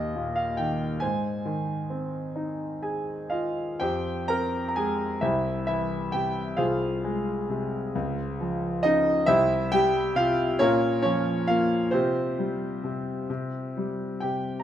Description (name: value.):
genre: classical, lyrical solo piano.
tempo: 44 BPM (dotted quarters).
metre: 6/8.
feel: uneven beats, rubato.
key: Ab major, F minor from 3.8 s.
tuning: A4 = 438 Hz.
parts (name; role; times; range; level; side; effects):
clear concert grand piano; solo; 0.0-14.6 s; C2 to Bb5; -24 LUFS; equal; none.
room: moderate recital hall reverb, RT60 1.4 s.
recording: none.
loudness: -24 LUFS.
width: side -10 dB against mid.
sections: 0.0-3.8 A section; 3.8-14.6 B section.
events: grand piano fill 2.4-3.8.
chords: 0.0 Eb; 1.0 Ab; 3.8 Fmadd9; 5.2 C; 6.6 Fm/C; 7.9 Db; 9.3 C; 10.6 Bbm; 11.9 Csus4.